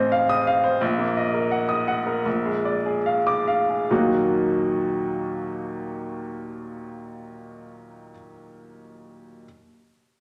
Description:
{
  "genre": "classical, virtuoso piano study",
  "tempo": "70-87 BPM",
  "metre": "4/4",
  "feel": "rubato",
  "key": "Eb minor",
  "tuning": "A4 = 440 Hz",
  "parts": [
    { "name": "clear baby grand piano", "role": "solo", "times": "0.0-9.5 s", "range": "A1 to Eb6", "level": "-24 LUFS", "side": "equal", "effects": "none" }
  ],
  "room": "wet recital hall reverb, RT60 1.5 s",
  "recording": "none",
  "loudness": "-23 LUFS",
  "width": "mono",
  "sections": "0.0-3.9 A section; 3.9-7.2 B section",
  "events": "slowing down 0.0-3.9",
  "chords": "0.0 F7/A; 0.8 Ebm/Bb; 2.3 Bb7; 3.9 Ebm"
}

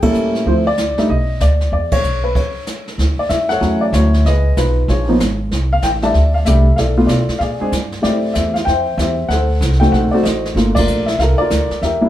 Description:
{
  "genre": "jazz piano trio",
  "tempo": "190 BPM",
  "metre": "4/4",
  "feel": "swing 63% on 8ths",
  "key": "unclear",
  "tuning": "A4 = 440 Hz",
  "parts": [
    { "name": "warm upright piano", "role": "melody", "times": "0.0-12.1 s", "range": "F3 to A5", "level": "-16 LUFS", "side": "left 1 dB", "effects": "none" },
    { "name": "upright bass", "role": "bass", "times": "0.0-12.0 s", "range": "G1 to B2", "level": "-16 LUFS", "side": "equal", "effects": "none" },
    { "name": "jazz brush drum kit", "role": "drums", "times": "0.0-12.1 s", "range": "brushed snare drum, crash cymbal, hi-hat, kick drum, ride cymbal, snare drum", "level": "-23 LUFS", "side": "right 2 dB", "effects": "none" }
  ],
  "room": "wet small room reverb, RT60 0.6 s",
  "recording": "heard from further back in the room",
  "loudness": "-13 LUFS",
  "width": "side -13 dB against mid",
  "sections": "0.0-3.0 A section; 3.0-12.1 B section",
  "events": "band accent 1.9, 10.7; stop 2.4-3.0",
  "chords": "0.5 Dm9; 1.1 Bm; 1.7 E5; 2.4 N.C.; 3.0 Dmaj9; 4.3 C#13; 5.5 C69; 6.8 Bm7b5; 7.4 Bb7; 8.0 Am7; 9.3 D7b9; 10.6 Gm9"
}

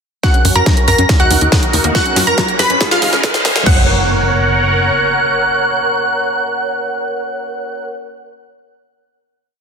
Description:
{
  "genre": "uplifting trance",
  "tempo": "140 BPM",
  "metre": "4/4",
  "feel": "straight",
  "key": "F# major",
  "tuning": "A4 = 443 Hz",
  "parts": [
    { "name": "wide unison pluck", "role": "melody", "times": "0.2-8.6 s", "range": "E#4 to B5", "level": "-18 LUFS", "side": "right 1 dB", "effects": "sidechain pumping, digital delay" },
    { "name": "plucky unison lead", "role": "second line", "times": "0.2-7.9 s", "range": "E#6 to B6", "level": "-19 LUFS", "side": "equal", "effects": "cassette tape, sidechain pumping, digital delay" },
    { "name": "filtered supersaw swell", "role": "sustained chords", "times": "0.2-7.9 s", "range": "C#4 to E#5", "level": "-18 LUFS", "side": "right 1 dB", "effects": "sidechain pumping" },
    { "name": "wide unison pluck", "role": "arpeggios", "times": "0.2-3.9 s", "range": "D#3 to A#4", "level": "-23 LUFS", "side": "left 3 dB", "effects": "sidechain pumping, digital delay" },
    { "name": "electronic kick drum", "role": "drums", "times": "0.2-3.7 s", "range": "none", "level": "-14 LUFS", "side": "equal", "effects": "distortion, overdrive" },
    { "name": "techno drum kit", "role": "drums", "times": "0.2-3.7 s", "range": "crash cymbal, hi-hat, snare drum", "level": "-18 LUFS", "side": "equal", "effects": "overdrive, high-pass filter on snare, sidechain pumping on hats, high-pass filter on hats, sidechain pumping on cymbals, high-pass filter on cymbals" },
    { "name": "riser and impact", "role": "sound effects", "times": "1.7-8.6 s", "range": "none", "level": "-21 LUFS", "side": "equal", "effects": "none" },
    { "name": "tight sequencer bass", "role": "bass", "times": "0.4-4.9 s", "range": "C#2 to F#2", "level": "-18 LUFS", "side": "equal", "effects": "sidechain pumping" }
  ],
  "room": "moderate lush hall reverb, RT60 1.9 s",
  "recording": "dense, heavily limited modern master, high-pass filter",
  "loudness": "-11 LUFS",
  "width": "side -6 dB against mid",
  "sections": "0.2-3.7 build; 3.7-7.1 final chord",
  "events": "build-up 0.2-3.7; drum fill 0.2-3.7; filter sweep on synth pluck 0.2-3.7; filter sweep 0.2-3.7; riser 1.7-3.7",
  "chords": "0.2 F#; 1.1 D#m; 1.9 F#; 2.8 C#add9; 3.7 F#"
}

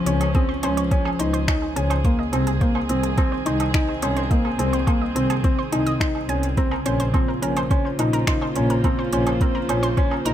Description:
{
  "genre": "piano and strings electronica",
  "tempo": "106 BPM",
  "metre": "4/4",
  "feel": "straight",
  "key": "unclear",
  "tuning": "A4 = 441 Hz",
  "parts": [
    { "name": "dark chamber string section", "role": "sustained chords", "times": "0.0-10.3 s", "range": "Db3 to C5", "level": "-27 LUFS", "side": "equal", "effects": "sidechain pumping" },
    { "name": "analog pluck", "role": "arpeggios", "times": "0.1-10.3 s", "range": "Ab4 to C6", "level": "-31 LUFS", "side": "right 2 dB", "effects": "chorus, sidechain pumping, tape echo" },
    { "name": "felt-muted upright piano", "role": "riff", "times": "0.1-10.3 s", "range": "Bb3 to Eb4", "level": "-24 LUFS", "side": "equal", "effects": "tape echo" },
    { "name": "clear chamber double bass section", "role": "bass", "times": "0.1-10.3 s", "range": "Bb1 to Db2", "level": "-26 LUFS", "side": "equal", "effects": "sidechain pumping" },
    { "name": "organic electronic drum kit", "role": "drums", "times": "0.1-10.3 s", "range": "finger snaps, hi-hat, woodblock", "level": "-30 LUFS", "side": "right 2 dB", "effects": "overdrive" },
    { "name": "electronic kick drum", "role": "drums", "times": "0.3-10.1 s", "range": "none", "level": "-21 LUFS", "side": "equal", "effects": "overdrive" }
  ],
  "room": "light reverb, digital ambience",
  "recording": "none",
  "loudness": "-19 LUFS",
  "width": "side -11 dB against mid",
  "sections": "0.0-10.3 A section",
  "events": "none",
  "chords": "0.0 Dbmaj7; 2.0 Ab/C; 6.6 Bbmadd9"
}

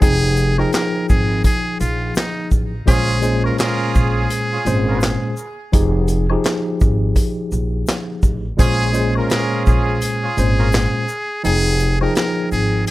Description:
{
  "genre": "hip hop, boom-bap hip-hop",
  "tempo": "84 BPM",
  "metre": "4/4",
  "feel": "swing 60% on 16ths",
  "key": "Bb minor",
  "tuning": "A4 = 440 Hz",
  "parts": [
    { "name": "trumpet with metal mute", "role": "melody", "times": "0.0-12.9 s", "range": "Eb4 to Bb4", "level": "-23 LUFS", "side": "equal", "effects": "digital delay" },
    { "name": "tine electric piano", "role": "accompaniment", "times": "0.0-12.9 s", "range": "Bb2 to G5", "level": "-20 LUFS", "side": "equal", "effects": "overdrive, fast stereo tremolo, cassette tape" },
    { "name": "upright bass", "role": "bass", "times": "0.0-12.8 s", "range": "F1 to Bb1", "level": "-20 LUFS", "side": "equal", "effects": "none" },
    { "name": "vintage drum kit", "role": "drums", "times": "0.0-12.9 s", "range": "handclaps, hi-hat, kick drum, shaker, snare drum", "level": "-18 LUFS", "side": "equal", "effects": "none" },
    { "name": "egg shaker and woodblock", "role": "percussion", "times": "0.0-12.9 s", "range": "none", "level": "-34 LUFS", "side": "left 10 dB", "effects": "none" },
    { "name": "warm trumpet section", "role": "stabs", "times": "2.9-10.7 s", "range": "Db4 to Bb4", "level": "-26 LUFS", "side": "right 5 dB", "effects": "digital delay" }
  ],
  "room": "little or no reverb",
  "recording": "none",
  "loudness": "-15 LUFS",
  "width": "side -17 dB against mid",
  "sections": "0.0-12.9 A section",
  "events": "kick muted 11.4-12.9",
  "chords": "0.0 Fm9; 2.9 Bbm9; 5.7 Fm9; 8.6 Bbm9; 11.4 Fm9"
}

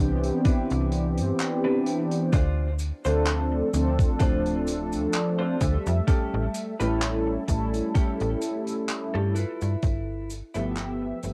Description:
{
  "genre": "vaporwave",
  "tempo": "64 BPM",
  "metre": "4/4",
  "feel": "swing 55% on 16ths",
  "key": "D dorian",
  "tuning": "A4 = 442 Hz",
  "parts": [
    { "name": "mellow synth brass", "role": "accompaniment", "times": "0.0-11.3 s", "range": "E3 to E5", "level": "-29 LUFS", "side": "equal", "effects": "lush chorus, cassette tape, tape echo" },
    { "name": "slap-like FM bass", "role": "bass", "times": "0.0-11.3 s", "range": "D1 to G2", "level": "-30 LUFS", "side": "equal", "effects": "none" },
    { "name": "modern studio drum kit", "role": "drums", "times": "0.2-11.3 s", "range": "cabasa, handclaps, hi-hat", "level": "-37 LUFS", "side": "equal", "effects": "none" },
    { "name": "semi-hollow electric guitar", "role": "riff", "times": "0.4-11.3 s", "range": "C#4 to C5", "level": "-35 LUFS", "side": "equal", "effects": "subtle chorus, low-pass filter, cassette tape, tape echo" },
    { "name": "electronic kick drum", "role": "drums", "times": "0.5-10.0 s", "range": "none", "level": "-25 LUFS", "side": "equal", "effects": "overdrive" }
  ],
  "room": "moderate booth ambience, RT60 0.2 s",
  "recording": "home recording on cassette",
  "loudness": "-26 LUFS",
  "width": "mono",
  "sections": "0.0-11.3 A section",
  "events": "fade-out 7.3-11.3",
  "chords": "0.0 Cmaj9; 2.3 Dm7; 6.1 A7; 9.4 G13"
}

